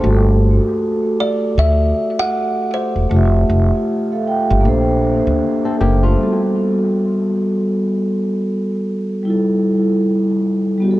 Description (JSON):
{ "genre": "lo-fi hip hop", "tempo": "78 BPM", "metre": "4/4", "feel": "swing 60% on 16ths", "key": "G major", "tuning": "A4 = 439 Hz", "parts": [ { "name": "flamenco guitar", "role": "second line", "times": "0.0-0.2, 5.7-6.4 s", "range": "A3 to A4", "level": "-26 LUFS", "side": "left 2 dB", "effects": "low-pass filter, analog delay" }, { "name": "vibraphone with soft mallets", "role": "accompaniment", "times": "0.0-11.0 s", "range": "G3 to G5", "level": "-16 LUFS", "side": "equal", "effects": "cassette tape, low-pass filter, analog delay" }, { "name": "upright bass", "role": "bass", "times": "0.0-6.1 s", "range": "E1 to D2", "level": "-14 LUFS", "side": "equal", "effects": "none" }, { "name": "kalimba", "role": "melody", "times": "1.2-3.8 s", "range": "C5 to F#5", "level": "-21 LUFS", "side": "equal", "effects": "low-pass filter, analog delay" } ], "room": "light reverb, small room ambience", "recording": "echo-heavy mix, cassette tape", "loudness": "-14 LUFS", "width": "side -17 dB against mid", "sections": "0.0-11.0 A section", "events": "none", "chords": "0.0 Gsus2; 3.1 Fmaj9; 4.6 Bbmaj9; 6.2 Gmaj9; 9.3 Fmaj9", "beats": "| 0.03 0.80 1.57 2.34 | 3.11 3.88 4.65 5.42 | 6.18 6.95 7.72 8.49 | 9.26 10.03 10.80" }